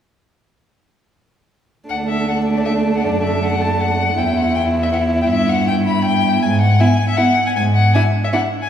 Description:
quick classical-period movement for string quartet; 158 BPM; 3/4; rubato; D major; A4 = 440 Hz
warm violin; melody; 1.9-8.7 s; D5 to B5; -20 LUFS; left 4 dB
rich violin; second line; 1.9-8.4 s; D4 to E4; -23 LUFS; left 2 dB
rich viola; accompaniment; 1.9-8.4 s; A3 to D4; -21 LUFS; right 2 dB
rich cello; bass; 1.9-7.9 s; D2 to G#2; -18 LUFS; right 1 dB
wet concert hall reverb, RT60 2.0 s; heard from further back in the room; -14 LUFS; side -9 dB against mid
1.9-8.7 A section
1.9 D5; 3.0 D/F#; 4.2 E5; 5.3 Em/G; 6.4 E/G#; 7.6 E7/G# (rootless)
| 1.89 2.27 2.66 | 3.04 3.42 3.80 | 4.17 4.55 4.92 | 5.30 5.67 6.05 | 6.42 6.80 7.18 | 7.57 7.95 8.33

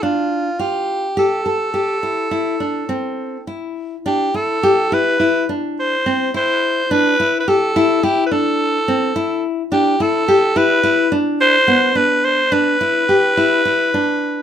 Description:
contemporary instrumental, contemporary; 106 BPM; 5/4; straight; A minor; A4 = 440 Hz
raspy alto saxophone; melody; 0.0-14.4 s; F4 to C5; -16 LUFS; equal
nylon-string guitar; arpeggios; 0.0-14.4 s; B3 to A4; -18 LUFS; left 1 dB
light reverb; close, detailed microphones; -14 LUFS; side -9 dB against mid
0.0-4.1 A section; 4.1-14.4 B section
0.0 Dm; 1.2 Am7; 4.1 A5; 9.7 G6 (rootless)
0.03 0.60 | 1.17 1.75 2.32 2.90 3.48 | 4.06 4.64 5.21 5.78 6.35 | 6.92 7.48 8.04 8.61 9.17 | 9.73 10.29 10.85 11.41 11.96 | 12.53 13.09 13.66 14.23

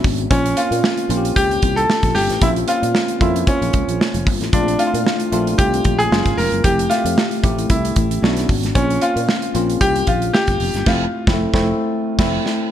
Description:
polished 1980s jazz-funk pop; 114 BPM; 4/4; swing 54% on 16ths; A4 = 442 Hz
tine electric piano; accompaniment; 0.0-12.7 s; Ab3 to E5; -21 LUFS; left 1 dB; overdrive, wide subtle chorus
sustaining fretless electric bass; bass; 0.0-12.4 s; F1 to Bb2; -22 LUFS; equal; ensemble chorus
modern studio drum kit; drums; 0.0-12.6 s; crash cymbal, hi-hat, kick drum, snare drum; -20 LUFS; right 1 dB
clear baby grand piano; melody; 0.3-12.4 s; Db4 to Bb4; -20 LUFS; left 1 dB; ping-pong delay
light reverb, studio ambience; bright 1980s-style digital production; -15 LUFS; side -10 dB against mid
0.0-12.7 A section
band accent 10.9-12.7; drum fill 12.5
0.3 Bbmadd9; 4.5 Bbmaj7; 6.1 Gbmaj9; 6.6 Fmaj9; 8.2 Bmadd9; 8.8 Bbmadd9; 10.9 Fmaj7
| 0.30 0.83 1.36 1.89 | 2.42 2.94 3.47 4.00 | 4.53 5.06 5.58 6.11 | 6.64 7.17 7.70 8.23 | 8.75 9.28 9.81 10.34 | 10.87 11.40 11.93 12.45

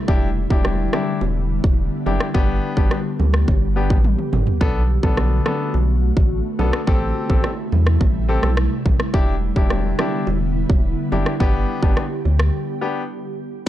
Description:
dancehall; 106 BPM; 4/4; straight; G major; A4 = 438 Hz
ethereal airy pad; sustained chords; 0.0-13.6 s; C3 to G4; -25 LUFS; left 1 dB; ensemble chorus, built-in reverb, sidechain pumping
bright concert grand piano; accompaniment; 0.1-13.0 s; B3 to A4; -25 LUFS; left 4 dB
saturated sub bass; bass; 0.1-12.5 s; E1 to E2; -20 LUFS; equal
pop drum kit; drums; 0.1-12.5 s; kick drum, rim click, toms; -19 LUFS; equal
bongos; percussion; 0.1-12.4 s; -30 LUFS; right 7 dB
digital ambience; dark, warm production; -17 LUFS; side -13 dB against mid
0.0-13.7 A section
drum fill 4.0-4.6; break 12.5-13.7
0.1 Em7; 2.3 G; 4.6 Bm7; 6.9 Am7; 9.1 Em7; 11.4 G
| 0.08 0.65 1.21 1.78 | 2.35 2.91 3.48 4.04 | 4.61 5.18 5.74 6.31 | 6.87 7.44 8.01 8.57 | 9.14 9.71 10.27 10.84 | 11.40 11.97 12.54 13.10

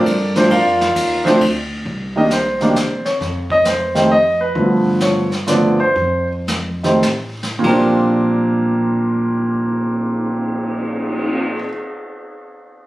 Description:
jazz piano trio; 93-134 BPM; 3/4; swing 66% on 8ths; Bb major; A4 = 441 Hz
warm upright piano; melody; 0.0-11.7 s; Bb2 to F5; -15 LUFS; right 1 dB
upright bass; bass; 0.0-11.6 s; A1 to C3; -24 LUFS; equal
jazz brush drum kit; drums; 0.1-11.4 s; brushed snare drum, crash cymbal, cymbal swell, hi-hat, kick drum, ride cymbal, snare drum; -24 LUFS; equal
light reverb; recorded on a phone in the room, studio reverb, compression; -14 LUFS; side -16 dB against mid
0.0-1.9 A section; 1.9-7.6 B section; 7.6-11.5 C section
slowing down 4.6-7.6
0.0 Bbmaj7; 1.9 Cm; 3.2 F7(no3); 4.6 G9; 6.0 F; 7.6 Bb69
0.06 | 0.51 0.96 1.41 | 1.86 2.31 2.75 | 3.21 3.65 4.10 | 4.55 5.01 5.47 | 5.96 6.48 7.04 | 7.65 8.29 8.94 | 9.58 10.23 10.87

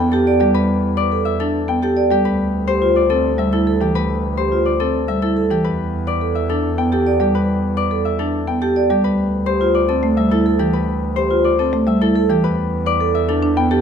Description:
classical, minimalist pattern music; 106 BPM; 3/4; straight; A4 = 441 Hz
Celtic harp; melody; 0.0-13.8 s; G4 to G5; -20 LUFS; left 9 dB
marimba with medium mallets; accompaniment; 0.0-13.8 s; E3 to D4; -20 LUFS; equal
warm double bass; bass; 0.0-13.8 s; D2 to E2; -23 LUFS; right 3 dB
vibraphone with medium mallets; arpeggios; 0.1-13.8 s; C4 to D5; -20 LUFS; right 5 dB
moderate recital hall reverb, RT60 1.7 s; close, detailed microphones; -15 LUFS; side -7 dB against mid
0.0-13.8 A section
0.0 Em7; 2.2 D9sus4; 5.6 Em7; 9.0 D9sus4; 12.4 Em7
| 0.55 1.12 1.68 | 2.25 2.81 3.38 | 3.95 4.51 5.08 | 5.64 6.21 6.78 | 7.34 7.91 8.47 | 9.04 9.61 10.17 | 10.74 11.30 11.87 | 12.44 13.00 13.57

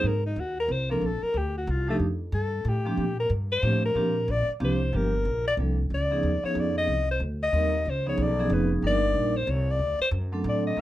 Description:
jazz, small-group swing and bop; 184 BPM; 3/4; swing 62% on 8ths; Bb major, G minor from 4.9 s; A4 = 440 Hz
breathy alto saxophone; melody; 0.0-10.8 s; A3 to Eb5; -27 LUFS; left 2 dB
vibraphone with medium hard mallets; accompaniment; 0.0-10.8 s; F3 to Bb4; -29 LUFS; right 2 dB
upright bass; bass; 0.0-10.8 s; E#1 to Bb2; -28 LUFS; equal
light reverb; lossy compression artefacts; -24 LUFS; side -14 dB against mid
0.0-4.9 A section; 4.9-10.8 A section
alto saxophone solo 0.0-10.8
0.0 Abadd9; 1.0 Bbmaj9; 2.0 Fadd9; 3.0 Bb69; 4.9 Gm7; 5.9 C#9; 6.9 Cm7; 7.9 C#9; 8.8 Ebmaj7; 9.8 D7
| 0.04 0.37 0.70 | 1.02 1.35 1.68 | 2.00 2.33 2.65 | 2.98 3.31 3.63 | 3.96 4.28 4.61 | 4.93 5.26 5.58 | 5.91 6.23 6.56 | 6.88 7.21 7.53 | 7.86 8.18 8.51 | 8.83 9.15 9.48 | 9.80 10.13 10.46 | 10.78

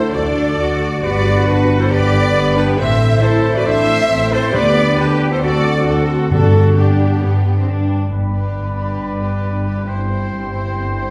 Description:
cinematic; 136 BPM; 4/4; straight; G major; A4 = 442 Hz
rich symphonic violin section; melody; 0.0-11.1 s; G4 to E5; -31 LUFS; equal
clear symphonic violin section; second line; 0.0-11.1 s; E4 to E5; -30 LUFS; equal
dark clarinet; second line; 0.0-11.1 s; B3 to A4; -28 LUFS; equal
mellow hollow silver concert flute; second line; 0.0-11.1 s; G4 to B5; -28 LUFS; equal
clear symphonic viola section; accompaniment; 0.0-11.1 s; C4 to E5; -24 LUFS; equal
concert harp; arpeggios; 0.0-11.1 s; G2 to C5; -27 LUFS; equal
bright trumpet section; stabs; 0.0-11.1 s; D4 to D5; -26 LUFS; equal
rich symphonic double bass section; bass; 0.0-11.1 s; G1 to G2; -21 LUFS; equal
warm studio cello section; bass; 0.0-11.1 s; G2 to G4; -26 LUFS; equal
clear trombone section; sustained chords; 0.1-11.1 s; G2 to D4; -26 LUFS; equal
mellow French horn section; sustained chords; 0.1-11.1 s; G3 to A4; -31 LUFS; equal
timpani; percussion; 4.5-8.7 s; G2 to D3; -24 LUFS; equal
clear oboe; second line; 8.1-11.1 s; B4 to C5; -32 LUFS; equal
wet recital hall reverb, RT60 1.5 s; heard from further back in the room; -16 LUFS; mono
0.0-8.1 A section; 8.1-11.1 B section
0.0 D; 1.0 G; 2.8 Am; 4.5 G/D; 5.4 D7; 6.3 G; 9.9 C/G
0.16 0.59 | 1.03 1.47 1.91 2.34 | 2.78 3.22 3.67 4.11 | 4.55 4.99 5.43 5.87 | 6.32 6.77 7.22 7.67 | 8.11 8.55 8.99 9.43 | 9.87 10.31 10.74

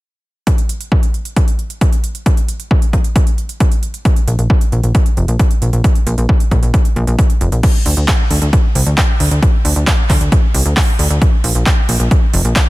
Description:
uplifting trance; 134 BPM; 4/4; straight; A4 = 444 Hz
big-room dance drum kit; drums; 0.5-12.6 s; crash cymbal, handclaps, hi-hat; -21 LUFS; right 2 dB; overdrive
electronic kick drum; drums; 0.5-12.6 s; -12 LUFS; equal; overdrive
plucky analog bass; bass; 4.3-12.5 s; F1 to D2; -14 LUFS; equal; sidechain pumping
little or no reverb; -11 LUFS; side -19 dB against mid
0.5-7.6 A section; 7.6-12.7 B section
| 0.47 0.92 1.36 1.81 | 2.26 2.71 3.16 3.60 | 4.05 4.50 4.95 5.39 | 5.84 6.29 6.74 7.19 | 7.63 8.08 8.53 8.98 | 9.43 9.87 10.32 10.77 | 11.22 11.66 12.11 12.56

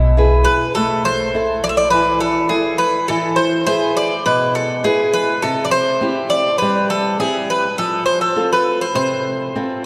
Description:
greek folk, Greek bouzouki band; 102 BPM; 4/4; straight; A4 = 444 Hz
Greek bouzouki; melody; 0.0-9.8 s; E4 to E5; -19 LUFS; equal
picked old ladder-braced acoustic guitar; accompaniment; 0.0-9.9 s; B2 to C5; -22 LUFS; equal
wet cathedral reverb, RT60 4.4 s; recorded in a church or concert hall; -17 LUFS; mono
0.8-9.9 A section
0.0 E; 0.8 Am; 3.1 E; 5.4 C; 7.8 F
0.17 | 0.76 1.34 1.92 2.51 | 3.09 3.68 4.26 4.85 | 5.43 6.02 6.61 7.19 | 7.78 8.37 8.95 9.54

